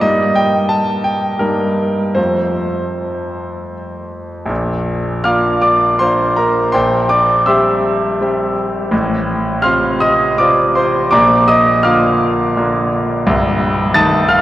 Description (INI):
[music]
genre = classical, romantic character piece for solo piano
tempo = 76-91 BPM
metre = 3/4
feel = rubato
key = Bb major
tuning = A4 = 442 Hz
[part]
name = clear concert grand piano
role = solo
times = 0.0-14.4 s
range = C1 to A6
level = -12 LUFS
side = equal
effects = none
[sound]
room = wet cathedral reverb, RT60 4.4 s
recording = worn, warbling old tape, cassette tape, warbly pitch drift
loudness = -12 LUFS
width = side -14 dB against mid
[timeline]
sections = 0.0-4.5 A section; 4.5-14.4 B section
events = none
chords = 0.0 Eb/G; 2.2 F; 4.5 Bb; 6.7 C7/Bb; 8.9 F/A; 11.1 Bb; 13.3 Adim/C